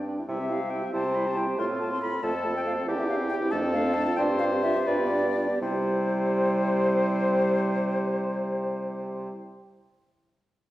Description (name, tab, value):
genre	quick classical-period movement for wind quintet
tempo	79-94 BPM (dotted quarters)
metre	6/8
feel	rubato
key	C major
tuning	A4 = 440 Hz
part	concert flute	melody	0.0-9.3 s	C5 to C6	-30 LUFS	left 2 dB	none
part	clear French horn	accompaniment	0.0-9.3 s	G3 to E4	-30 LUFS	equal	none
part	warm bassoon	bass	0.0-9.3 s	E2 to C3	-30 LUFS	right 1 dB	none
part	warm clarinet	accompaniment	0.1-9.3 s	D4 to A4	-32 LUFS	right 3 dB	none
part	warm oboe	second line	0.3-9.3 s	F4 to E5	-32 LUFS	left 1 dB	none
room	wet recital hall reverb, RT60 1.4 s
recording	worn, warbling old tape, cassette tape, warbly pitch drift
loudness	-24 LUFS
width	side -15 dB against mid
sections	0.0-5.6 A section; 5.6-8.5 B section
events	slowing down 2.2-5.6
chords	0.3 C; 1.6 F/A; 2.2 F; 2.9 C/E; 3.5 Dm7/F; 4.2 G7sus4; 4.9 G7; 5.6 C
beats	| 0.29 0.94 | 1.59 2.23 | 2.87 3.52 | 4.18 4.88 | 5.62 6.35 | 7.08 7.82